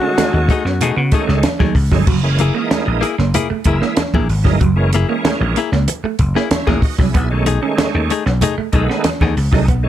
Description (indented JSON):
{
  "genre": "funk",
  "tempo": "95 BPM",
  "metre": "4/4",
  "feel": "straight",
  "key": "F# mixolydian",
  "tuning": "A4 = 438 Hz",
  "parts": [
    { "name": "breathy alto saxophone", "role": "melody", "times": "0.0-1.4 s", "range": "F#4", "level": "-21 LUFS", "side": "left 2 dB", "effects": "tape echo" },
    { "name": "semi-hollow electric guitar", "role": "riff", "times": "0.0-9.8 s", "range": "F#3 to C#4", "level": "-23 LUFS", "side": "right 10 dB", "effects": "none" },
    { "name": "bright tonewheel organ", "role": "stabs", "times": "0.0-9.9 s", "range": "D3 to G#4", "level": "-22 LUFS", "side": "right 4 dB", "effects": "chorus vibrato, slow rotary speaker" },
    { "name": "direct-recorded clean electric guitar", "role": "accompaniment", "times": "0.2-9.6 s", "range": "A3 to G#4", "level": "-21 LUFS", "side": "left 8 dB", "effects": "plate reverb" },
    { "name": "compact cocktail drum kit", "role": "drums", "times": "0.2-9.8 s", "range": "crash cymbal, hi-hat, kick drum, snare drum", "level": "-18 LUFS", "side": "equal", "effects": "none" },
    { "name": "congas", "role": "percussion", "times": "0.2-9.8 s", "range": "none", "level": "-24 LUFS", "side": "right 2 dB", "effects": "none" },
    { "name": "vintage slap bass", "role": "bass", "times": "0.3-9.9 s", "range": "F#1 to C#3", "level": "-16 LUFS", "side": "equal", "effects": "none" }
  ],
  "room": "light reverb",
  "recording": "none",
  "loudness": "-13 LUFS",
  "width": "side -12 dB against mid",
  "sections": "0.0-2.1 A section; 2.1-9.9 B section",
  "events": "none",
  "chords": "0.0 B13; 2.1 F#9; 7.1 B13"
}